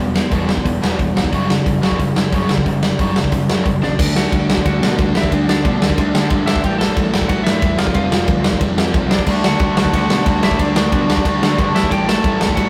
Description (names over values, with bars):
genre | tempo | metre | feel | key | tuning
punk rock | 182 BPM | 4/4 | straight | unclear | A4 = 440 Hz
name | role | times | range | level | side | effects
sludgy distorted guitar | riff | 0.0-12.7 s | E2 to D4 | -24 LUFS | equal | overdrive
tight distorted guitar | riff | 0.0-4.0, 9.3-12.7 s | E2 to D4 | -25 LUFS | equal | distortion
fuzz picked electric bass | bass | 0.0-12.7 s | E1 to D3 | -26 LUFS | equal | overdrive
big rock drum kit | drums | 0.2-12.6 s | crash cymbal, hi-hat, kick drum, ride cymbal, snare drum | -18 LUFS | equal | none
lightly driven lead guitar | melody | 3.8-12.7 s | D4 to A5 | -26 LUFS | equal | delay
room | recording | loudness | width
light reverb | rough rehearsal-room recording | -16 LUFS | mono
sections
0.0-4.0 A section; 4.0-12.7 B section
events
drum fill 3.8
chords
0.0 E5; 1.3 F#5; 4.0 D; 6.6 A5; 7.8 F5; 9.3 D; 11.9 A5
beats
0.32 0.66 0.99 | 1.33 1.66 2.00 2.33 | 2.66 3.00 3.33 3.66 | 4.00 4.33 4.66 4.99 | 5.32 5.65 5.98 6.31 | 6.64 6.97 7.30 7.63 | 7.96 8.29 8.62 8.95 | 9.28 9.61 9.94 10.27 | 10.60 10.93 11.26 11.58 | 11.91 12.24 12.57